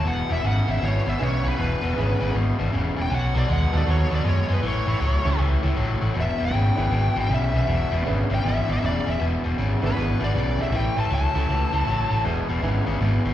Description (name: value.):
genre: blues.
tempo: 158 BPM.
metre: 4/4.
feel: swing 64% on 8ths.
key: E mixolydian.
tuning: A4 = 439 Hz.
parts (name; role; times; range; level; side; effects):
smooth overdriven lead guitar; melody; 0.0-12.2 s; B4 to A5; -28 LUFS; left 1 dB; slapback echo.
crunchy overdriven guitar; riff; 0.0-13.3 s; E2 to G#3; -26 LUFS; left 3 dB; slapback echo.
hollow-body short-scale fingered electric bass; bass; 0.1-13.3 s; E1 to F#2; -23 LUFS; equal; none.
bright upright piano; accompaniment; 1.2-13.2 s; G#3 to B4; -32 LUFS; right 9 dB; slapback echo.
room: little or no reverb.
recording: live gig heard through the venue's PA, recital hall reverb.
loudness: -20 LUFS.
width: side -12 dB against mid.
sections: 0.0-9.2 A section; 9.2-13.3 A section.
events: lead electric guitar solo 0.0-13.3.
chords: 0.1 E7; 3.1 B7; 4.6 A7; 6.2 E7; 10.7 A7; 12.2 E7.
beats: | 0.05 0.44 0.82 1.20 | 1.58 1.96 2.35 2.73 | 3.11 3.49 3.87 4.25 | 4.63 5.01 5.39 5.77 | 6.15 6.54 6.92 7.30 | 7.68 8.06 8.44 8.82 | 9.20 9.58 9.96 10.34 | 10.72 11.10 11.48 11.86 | 12.24 12.62 13.01.